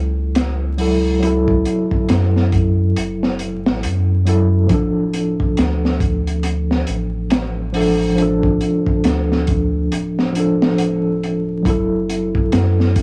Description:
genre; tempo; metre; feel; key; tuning
trip hop; 69 BPM; 4/4; swing 60% on 16ths; unclear; A4 = 441 Hz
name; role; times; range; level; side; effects
tine electric piano; accompaniment; 0.0-13.0 s; F3 to A4; -21 LUFS; equal; tremolo, vintage 12-bit sampler grit, low-pass filter, cassette tape, tape echo
soft dub sub bass; bass; 0.0-13.0 s; D1 to F#2; -22 LUFS; equal; none
crunchy breakbeat drum kit; drums; 0.4-13.0 s; hi-hat, kick drum, snare drum; -22 LUFS; equal; cassette tape
room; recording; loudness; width
light reverb, small room ambience; home recording on cassette, vinyl crackle; -17 LUFS; mono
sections
0.0-13.0 A section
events
none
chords
0.0 F#m7; 4.7 Dm; 11.7 F#m7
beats
0.35 | 1.22 2.09 2.96 3.83 | 4.70 5.57 6.44 7.31 | 8.18 9.04 9.91 10.79 | 11.65 12.52

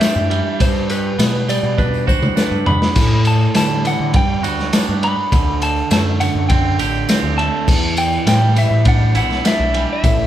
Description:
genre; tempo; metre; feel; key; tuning
psychedelic rock; 102 BPM; 4/4; straight; unclear; A4 = 441 Hz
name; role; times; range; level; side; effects
electric slide guitar; melody; 0.0-10.3 s; B4 to B5; -21 LUFS; left 1 dB; none
twangy electric guitar; riff; 0.0-10.3 s; E2 to G4; -21 LUFS; right 6 dB; phaser
crunchy breakbeat drum kit; drums; 0.0-10.2 s; crash cymbal, kick drum, ride cymbal, snare drum, toms; -18 LUFS; equal; none
tambourine; percussion; 0.0-10.3 s; none; -34 LUFS; left 9 dB; none
growling picked electric bass; bass; 0.2-10.3 s; A1 to D3; -19 LUFS; left 1 dB; overdrive
room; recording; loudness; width
moderate large studio reverb, RT60 0.9 s; band playing live in one room; -14 LUFS; side -12 dB against mid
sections
0.0-10.3 A section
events
drum fill 1.8-3.0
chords
0.0 Em7; 0.6 Gmaj7; 3.0 A5; 4.1 Gmaj7; 5.3 D7sus4; 7.7 Em7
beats
0.02 | 0.61 1.20 1.79 2.38 | 2.96 3.55 4.14 4.73 | 5.32 5.91 6.50 7.09 | 7.68 8.27 8.86 9.45 | 10.04

